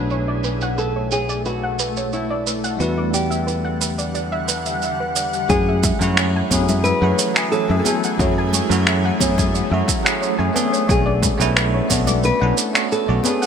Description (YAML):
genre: sunset chillout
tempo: 89 BPM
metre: 4/4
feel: straight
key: unclear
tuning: A4 = 435 Hz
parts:
  - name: nylon-string guitar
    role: melody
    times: 0.0-13.5 s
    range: D4 to B4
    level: -25 LUFS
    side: equal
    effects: ping-pong delay
  - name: bell-like tine electric piano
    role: accompaniment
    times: 0.0-13.5 s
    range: F#3 to F#5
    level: -24 LUFS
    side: moving between left 4 dB and right 3 dB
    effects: medium stereo tremolo, auto-pan, digital delay
  - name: shimmering ambient pad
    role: sustained chords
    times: 0.0-13.5 s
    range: D3 to F#5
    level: -27 LUFS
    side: left 1 dB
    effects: chorus, built-in reverb, phaser
  - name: soft round pluck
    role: arpeggios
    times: 0.0-13.5 s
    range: B4 to G#5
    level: -27 LUFS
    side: right 2 dB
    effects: analog chorus, digital delay
  - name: fretless electric bass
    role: bass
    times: 0.0-13.2 s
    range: B1 to F#2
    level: -22 LUFS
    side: left 1 dB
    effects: none
  - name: electronic cabasa and finger snaps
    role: drums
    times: 0.1-13.5 s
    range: none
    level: -22 LUFS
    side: right 3 dB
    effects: none
  - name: electronic kick drum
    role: drums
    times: 5.5-12.0 s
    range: none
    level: -23 LUFS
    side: left 1 dB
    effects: overdrive
  - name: congas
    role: percussion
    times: 5.8-13.4 s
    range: none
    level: -27 LUFS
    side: left 3 dB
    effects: none
room: moderate plate reverb, RT60 3.0 s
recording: bright 1980s-style digital production, low-pass filter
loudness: -17 LUFS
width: side -7 dB against mid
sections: 0.0-5.5 A section; 5.5-13.5 B section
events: filter sweep 0.0-5.5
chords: 0.0 Bm9; 2.8 Em9; 5.5 F#m9; 10.6 Bm9